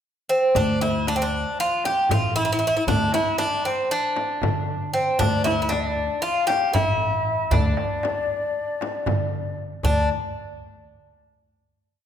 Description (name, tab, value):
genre	Turkish makam ensemble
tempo	233 BPM (eighths)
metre	9/8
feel	straight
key	D makam ussak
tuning	A4 = 440 Hz
part	Greek bouzouki	melody	0.3-10.1 s	C4 to G4	-23 LUFS	right 1 dB	none
part	upright bass	bass	0.6-10.1 s	A1 to D3	-27 LUFS	equal	none
part	darbuka	percussion	0.6-10.1 s	none	-30 LUFS	right 3 dB	none
part	frame drum	percussion	0.6-10.1 s	none	-30 LUFS	left 4 dB	none
part	breathy bright ney	second line	5.2-10.1 s	D5 to F5	-27 LUFS	left 5 dB	none
room	wet scoring stage reverb, RT60 1.8 s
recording	recorded in a church or concert hall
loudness	-20 LUFS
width	side -9 dB against mid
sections	0.0-0.6 pickup bar; 0.6-9.8 A section; 9.8-12.1 final note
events	none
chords	none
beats	0.05 0.30 | 0.56 0.82 1.08 1.33 1.59 1.85 2.11 2.37 2.62 | 2.88 3.14 3.39 3.65 3.91 4.17 4.42 4.68 4.94 | 5.20 5.45 5.71 5.97 6.23 6.49 6.74 7.00 7.26 | 7.52 7.78 8.03 8.29 8.55 8.81 9.07 9.32 9.58 | 9.84